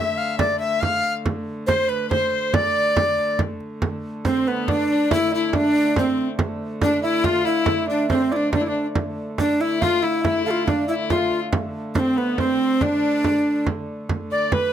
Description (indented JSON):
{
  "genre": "medieval dance",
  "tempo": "140 BPM",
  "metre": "3/4",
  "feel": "straight",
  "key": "D dorian",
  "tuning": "A4 = 440 Hz",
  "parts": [
    { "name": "breathy bass recorder", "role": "melody", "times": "0.0-14.7 s", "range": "B3 to F5", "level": "-20 LUFS", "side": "right 1 dB", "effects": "none" },
    { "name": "warm fiddle", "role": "second line", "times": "0.0-14.7 s", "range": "B3 to F5", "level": "-27 LUFS", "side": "left 8 dB", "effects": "none" },
    { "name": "dark hurdy-gurdy", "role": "drone", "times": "0.0-14.7 s", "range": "D3 to A3", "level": "-32 LUFS", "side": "equal", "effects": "none" },
    { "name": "frame drum", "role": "percussion", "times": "0.4-14.7 s", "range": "none", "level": "-24 LUFS", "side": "right 3 dB", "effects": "none" },
    { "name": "concert harp", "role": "second line", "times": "4.3-14.7 s", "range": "B4 to D6", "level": "-29 LUFS", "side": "right 5 dB", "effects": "none" }
  ],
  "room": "light reverb",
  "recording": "close, detailed microphones",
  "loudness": "-19 LUFS",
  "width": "side -10 dB against mid",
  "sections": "0.0-3.8 A section; 3.8-14.1 A section",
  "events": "none",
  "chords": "none"
}